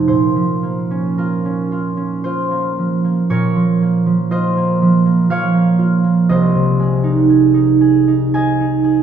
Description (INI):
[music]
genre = classical, solo harp piece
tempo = 53-62 BPM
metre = 3/4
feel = rubato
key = Bb minor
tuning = A4 = 440 Hz
[part]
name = concert harp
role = solo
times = 0.0-9.0 s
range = C2 to Ab5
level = -13 LUFS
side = right 3 dB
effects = none
[sound]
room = wet recital hall reverb, RT60 1.6 s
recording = heard from further back in the room, nothing above 10.3 kHz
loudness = -13 LUFS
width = side -8 dB against mid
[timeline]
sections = 0.0-3.3 A section; 3.3-9.0 B section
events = none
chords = 0.1 Bbm; 6.3 Ab/C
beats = | 0.08 1.18 2.23 | 3.29 4.30 5.29 | 6.27 7.27 8.32